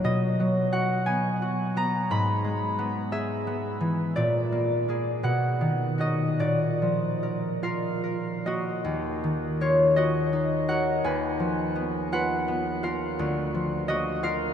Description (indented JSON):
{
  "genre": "classical, solo harp piece",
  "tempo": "48-60 BPM (dotted quarters)",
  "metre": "6/8",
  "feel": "rubato",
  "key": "Eb minor",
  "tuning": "A4 = 440 Hz",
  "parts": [
    { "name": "concert harp", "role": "solo", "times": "0.0-14.5 s", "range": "D2 to B5", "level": "-24 LUFS", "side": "equal", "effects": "none" }
  ],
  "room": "wet huge ambient reverb, RT60 7.4 s",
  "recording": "in a vast, echoing space, nothing above 10.9 kHz",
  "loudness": "-24 LUFS",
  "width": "side -8 dB against mid",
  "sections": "0.0-8.8 A section; 8.8-14.5 B section",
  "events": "none",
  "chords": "0.0 B; 2.1 E/G#; 4.2 Bb7; 5.3 B; 6.4 Bb; 8.8 Ebm; 11.0 Fm7b5/Eb; 13.2 Bb/D"
}